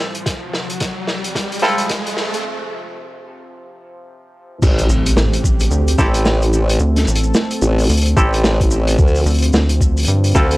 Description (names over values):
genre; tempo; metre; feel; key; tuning
glitch hop; 110 BPM; 4/4; swing 60% on 16ths; A minor; A4 = 440 Hz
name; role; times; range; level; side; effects
warm analog pad; sustained chords; 0.0-10.6 s; D2 to A4; -25 LUFS; equal; chorus, sidechain pumping
clav; stabs; 0.0-2.4, 6.0-10.6 s; C4 to A4; -21 LUFS; equal; auto-wah, sidechain pumping, low-pass filter, tape echo
riser and impact; sound effects; 0.0-6.8 s; none; -24 LUFS; equal; none
vintage drum kit; drums; 0.1-10.6 s; crash cymbal, hi-hat, shaker, snare drum; -21 LUFS; equal; high-pass filter on hats, high-pass filter on cymbals, high-pass filter on snare, high-pass filter on perc, high-pass filter on room
electronic kick drum; drums; 0.3-10.5 s; none; -15 LUFS; equal; overdrive
formant-sweep wobble bass; bass; 4.6-10.6 s; A1 to D2; -15 LUFS; equal; chorus, tube saturation
rubbery square bass; bass; 4.9-10.3 s; A1 to G2; -15 LUFS; equal; none
room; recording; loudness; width
light reverb; dry, gritty hardware recording, high-pass filter; -14 LUFS; side -19 dB against mid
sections
0.0-4.6 A section; 4.6-10.6 B section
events
build-up 0.0-4.6; drum fill 0.0-2.4; riser 0.0-2.4; filter sweep on analog synth pad 0.0-4.6; filter sweep 0.0-4.6; break 2.4-4.6; drop 4.6-10.6; impact 4.6-6.8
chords
0.3 Dm7; 4.6 Am7; 9.0 Dm7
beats
| 0.26 0.81 1.35 1.90 | 2.44 2.99 3.53 4.08 | 4.62 5.17 5.72 6.26 | 6.81 7.35 7.90 8.44 | 8.99 9.53 10.08